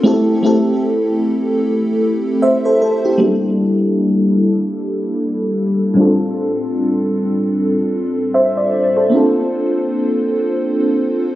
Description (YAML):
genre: R&B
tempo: 76 BPM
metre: 4/4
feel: swing 58% on 16ths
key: G dorian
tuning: A4 = 440 Hz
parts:
  - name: FM electric piano with soft pad layer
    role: solo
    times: 0.0-11.4 s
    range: A2 to E5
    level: -14 LUFS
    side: equal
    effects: chorus, tremolo, low-pass filter, ping-pong delay
room: moderate lush hall reverb, RT60 1.9 s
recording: recorded on a phone in the room, studio reverb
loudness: -14 LUFS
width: side -14 dB against mid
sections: 0.0-3.2 A section; 3.2-11.4 B section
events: filter sweep on FM electric piano 3.2-11.4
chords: 0.1 Am7; 3.2 Gm69; 6.0 F69/A; 9.1 Bbmaj9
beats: | 0.05 0.84 1.63 2.42 | 3.21 4.00 4.79 5.58 | 6.37 7.16 7.95 8.73 | 9.52 10.31 11.10